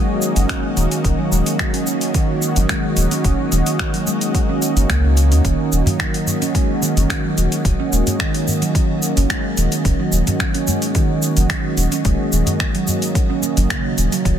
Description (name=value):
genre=organic downtempo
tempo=109 BPM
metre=4/4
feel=straight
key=Eb minor pentatonic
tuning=A4 = 440 Hz
part: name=warm analog pad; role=sustained chords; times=0.0-14.4 s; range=Eb3 to Eb5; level=-24 LUFS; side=equal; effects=chorus, sidechain pumping, shimmer reverb
part: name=handpan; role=arpeggios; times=0.0-14.4 s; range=Db3 to Db4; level=-20 LUFS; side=right 2 dB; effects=ping-pong delay
part: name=afro-pop drum kit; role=drums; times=0.2-14.4 s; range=cabasa, finger snaps, hi-hat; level=-24 LUFS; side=left 1 dB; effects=overdrive, soft clipping on snare
part: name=warm sub bass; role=bass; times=0.4-14.4 s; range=Eb1 to Eb2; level=-16 LUFS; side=equal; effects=sidechain pumping
part: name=electronic kick drum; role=drums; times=0.5-14.4 s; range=none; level=-20 LUFS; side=equal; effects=overdrive
part: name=udu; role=percussion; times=5.9-13.0 s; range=none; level=-22 LUFS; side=equal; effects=none
room=light reverb, digital ambience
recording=dense, heavily limited modern master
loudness=-16 LUFS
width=side -9 dB against mid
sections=0.0-14.4 A section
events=none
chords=0.0 Ebm7